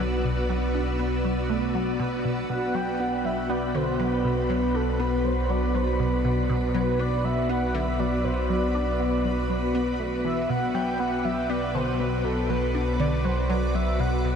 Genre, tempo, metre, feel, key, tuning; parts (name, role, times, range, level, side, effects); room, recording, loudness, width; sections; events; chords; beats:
ambient, sequencer-driven space music; 120 BPM; 4/4; straight; B minor; A4 = 440 Hz
string machine, full ensemble; sustained chords; 0.0-14.4 s; B3 to D5; -27 LUFS; left 1 dB; ensemble chorus
resonant blip pluck; riff; 0.0-14.4 s; B2 to D4; -30 LUFS; equal; phaser, analog chorus, ping-pong delay
fat analog bass; bass; 0.0-14.4 s; B1; -29 LUFS; equal
bubbling stepped-filter texture; texture; 0.0-14.4 s; B4 to E6; -36 LUFS; right 1 dB; chorus, built-in reverb
breathy flute-like synth lead; melody; 2.5-14.4 s; A4 to G5; -30 LUFS; equal; analog chorus, ping-pong delay
wet shimmer reverb, RT60 7.0 s; dark, warm production; -23 LUFS; side -7 dB against mid
0.0-14.4 A section
0.0 Bm
0.00 | 0.50 1.00 1.50 2.00 | 2.50 3.00 3.50 4.00 | 4.50 5.00 5.50 6.00 | 6.50 7.00 7.50 8.00 | 8.50 9.00 9.50 10.00 | 10.50 11.00 11.50 12.00 | 12.50 13.00 13.50 14.00